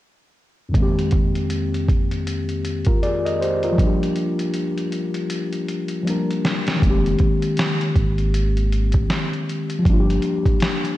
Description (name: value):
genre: lo-fi hip hop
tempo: 79 BPM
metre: 4/4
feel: swing 59% on 16ths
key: F dorian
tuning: A4 = 440 Hz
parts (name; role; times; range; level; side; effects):
- muted felt-like synth keys; accompaniment; 0.7-11.0 s; F2 to Eb5; -21 LUFS; left 1 dB; chorus
- dusty soul sampler-style drum kit; drums; 0.7-11.0 s; hi-hat, kick drum, snare drum; -21 LUFS; equal; vintage 12-bit sampler grit
- warm sub bass; bass; 6.8-10.2 s; F1 to Ab1; -20 LUFS; equal; none
room: light reverb, digital ambience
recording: cassette tape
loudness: -18 LUFS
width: side -15 dB against mid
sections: 0.7-6.8 A section; 6.8-11.0 B section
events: drum fill 3.8-6.8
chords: 0.7 Fm11; 3.8 Gm7; 6.8 Fm11; 9.9 Gm7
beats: | 0.74 1.50 2.26 3.02 | 3.78 4.54 5.30 6.06 | 6.82 7.58 8.34 9.10 | 9.86 10.62